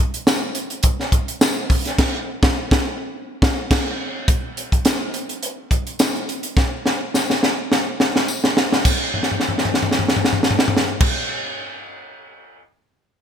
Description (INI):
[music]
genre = pop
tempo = 105 BPM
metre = 4/4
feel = swing 54% on 16ths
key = none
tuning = none
[part]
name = crisp fusion drum kit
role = drums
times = 0.1-12.6 s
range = crash cymbal, hi-hat, kick drum, snare drum, toms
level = -17 LUFS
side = equal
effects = gated reverb
[part]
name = tambourine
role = percussion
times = 0.3-11.1 s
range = none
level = -32 LUFS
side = left 4 dB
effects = none
[sound]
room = moderate lush hall reverb, RT60 2.1 s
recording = bright 1980s-style digital production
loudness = -17 LUFS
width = side -8 dB against mid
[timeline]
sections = 0.0-4.3 A section; 4.3-8.8 B section; 8.8-11.1 C section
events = band accent 2.0-4.3; drum fill 6.6-8.8, 9.1-11.0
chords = none